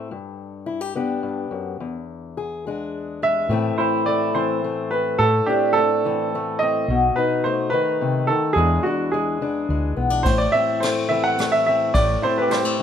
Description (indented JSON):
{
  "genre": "acoustic folk-pop ballad",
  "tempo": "106 BPM",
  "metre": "3/4",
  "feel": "straight",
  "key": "unclear",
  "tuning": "A4 = 441 Hz",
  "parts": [
    { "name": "fingerpicked acoustic archtop guitar", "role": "accompaniment", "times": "0.0-12.8 s", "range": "E2 to G#4", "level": "-24 LUFS", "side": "left 5 dB", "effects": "none" },
    { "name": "clear grand piano", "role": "melody", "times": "3.2-12.8 s", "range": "F#4 to F#5", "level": "-21 LUFS", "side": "right 2 dB", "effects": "none" },
    { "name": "woody fretless electric bass", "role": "bass", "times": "3.5-12.2 s", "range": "A1 to A2", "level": "-22 LUFS", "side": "equal", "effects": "none" },
    { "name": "electric guitar through a small old amp", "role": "arpeggios", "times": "3.8-6.3, 12.2-12.8 s", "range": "D4 to G4", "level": "-23 LUFS", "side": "right 6 dB", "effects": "harmonic tremolo" },
    { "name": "vintage brush drum kit", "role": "drums", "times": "10.3-12.6 s", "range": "kick drum, ride cymbal, rim click", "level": "-27 LUFS", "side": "equal", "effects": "none" }
  ],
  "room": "light reverb",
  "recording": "minimal, uncompressed stereo recording",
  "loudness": "-18 LUFS",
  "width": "side -8 dB against mid",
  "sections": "0.0-3.5 A section; 3.5-12.8 B section",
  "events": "none",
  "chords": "0.1 G; 1.8 E7; 3.5 Am; 6.9 B7; 8.6 E7; 10.3 Am"
}